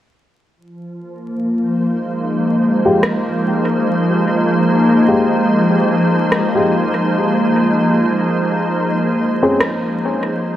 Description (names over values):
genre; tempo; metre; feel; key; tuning
ambient dub; 73 BPM; 4/4; swing 56% on 16ths; unclear; A4 = 435 Hz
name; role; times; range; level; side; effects
soft additive organ-like pad; sustained chords; 1.3-10.6 s; F3 to C5; -14 LUFS; equal; ensemble chorus, built-in reverb
dark upright piano; stabs; 2.9-9.6 s; Ab3 to Ab4; -20 LUFS; left 1 dB; low-pass filter, dub echo
electronic rim click; drums; 3.0-9.8 s; none; -22 LUFS; equal; dub echo
room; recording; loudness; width
wet echo chamber reverb, RT60 2.6 s; vinyl crackle; -13 LUFS; side -12 dB against mid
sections
0.6-10.6 A section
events
none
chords
0.6 Fmadd9; 7.1 Bb7(no3)